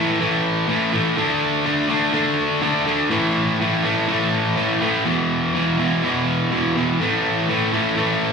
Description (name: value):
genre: rock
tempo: 123 BPM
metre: 4/4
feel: straight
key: unclear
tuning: A4 = 441 Hz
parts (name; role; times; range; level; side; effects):
- distorted electric guitar; solo; 0.0-8.3 s; E2 to D4; -17 LUFS; equal; distortion, slapback echo
room: light reverb, digital ambience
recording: live gig heard through the venue's PA, club reverb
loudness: -17 LUFS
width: side -5 dB against mid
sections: 0.0-8.3 A section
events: none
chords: 0.0 A5; 1.2 D5; 3.1 A5; 5.1 E5; 7.0 A5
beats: 0.20 0.69 | 1.17 1.66 2.14 2.63 | 3.12 3.60 4.09 4.57 | 5.06 5.55 6.03 6.52 | 7.01 7.49 7.98